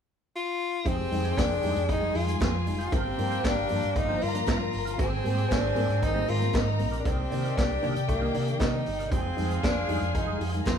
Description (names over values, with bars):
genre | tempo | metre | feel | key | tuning
disco | 116 BPM | 4/4 | straight | unclear | A4 = 440 Hz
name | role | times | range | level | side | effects
breathy tenor saxophone | melody | 0.4-10.8 s | Bb3 to F4 | -31 LUFS | left 1 dB | none
warm studio string section | second line | 0.8-10.8 s | G4 to Bb5 | -35 LUFS | left 4 dB | none
mellow electric guitar | accompaniment | 0.8-10.8 s | Ab3 to Eb5 | -38 LUFS | right 3 dB | wah
reed electric piano | accompaniment | 0.9-10.7 s | G2 to Eb4 | -37 LUFS | left 3 dB | medium tremolo
warm horn section | stabs | 0.9-10.8 s | Eb3 to F5 | -36 LUFS | left 1 dB | none
fingered electric bass | bass | 0.9-10.8 s | F1 to C3 | -30 LUFS | right 1 dB | none
vintage drum kit | drums | 0.9-10.8 s | handclaps, hi-hat, kick drum, snare drum | -30 LUFS | equal | none
room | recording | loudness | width
moderate large studio reverb, RT60 1.1 s | band playing live in one room | -25 LUFS | side -7 dB against mid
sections
0.9-10.8 A section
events
none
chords
0.0 N.C.; 0.9 Fm9; 2.9 Gm7; 5.0 Abmaj9; 7.1 Cm9; 9.1 Fm9